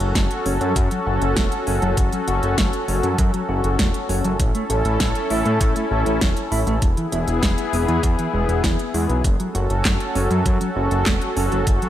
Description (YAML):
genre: synthwave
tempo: 99 BPM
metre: 4/4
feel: straight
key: F# minor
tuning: A4 = 440 Hz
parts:
  - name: warm analog pad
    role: sustained chords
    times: 0.0-11.9 s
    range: B3 to A4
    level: -23 LUFS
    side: left 1 dB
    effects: chorus, sidechain pumping
  - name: fat analog bass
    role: bass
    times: 0.0-11.8 s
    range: E1 to A2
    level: -22 LUFS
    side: equal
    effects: sidechain pumping
  - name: pop drum kit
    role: drums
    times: 0.0-11.9 s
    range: handclaps, hi-hat, snare drum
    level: -26 LUFS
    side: equal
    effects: studio reverb
  - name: mellow electric guitar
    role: riff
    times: 0.2-11.9 s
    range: E3 to A4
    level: -28 LUFS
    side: right 1 dB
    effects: lush chorus, digital delay
  - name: electronic kick drum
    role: drums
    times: 0.2-11.8 s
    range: none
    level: -21 LUFS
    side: equal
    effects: studio reverb
room: light reverb, digital ambience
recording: none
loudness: -18 LUFS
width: side -12 dB against mid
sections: 0.0-11.9 A section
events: none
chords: 0.0 F#m; 4.4 A; 6.8 E; 9.2 F#m